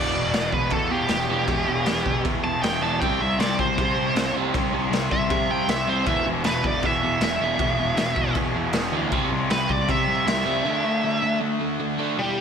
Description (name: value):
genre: punk rock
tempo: 157 BPM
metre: 4/4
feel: straight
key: E minor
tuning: A4 = 441 Hz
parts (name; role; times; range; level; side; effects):
- high-gain lead guitar; melody; 0.0-12.4 s; G3 to A5; -25 LUFS; right 1 dB; distortion, slapback echo
- distorted electric guitar; riff; 0.0-12.2 s; E2 to D4; -28 LUFS; equal; overdrive, slapback echo
- overdriven electric guitar; riff; 0.0-12.2 s; E2 to D4; -30 LUFS; right 10 dB; none
- sludgy distorted guitar; riff; 0.0-12.4 s; E2 to D4; -31 LUFS; left 10 dB; overdrive
- fuzz picked electric bass; bass; 0.0-10.6 s; E1 to C3; -30 LUFS; left 1 dB; overdrive
- raw garage drum kit; drums; 0.3-10.4 s; crash cymbal, kick drum, snare drum; -26 LUFS; equal; none
room: moderate lush hall reverb, RT60 2.0 s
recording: big arena sound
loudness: -20 LUFS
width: side -7 dB against mid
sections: 0.0-12.2 A section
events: lead electric guitar solo 0.0-12.2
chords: 0.0 Em; 3.0 C; 6.1 E5; 9.1 C; 10.6 D5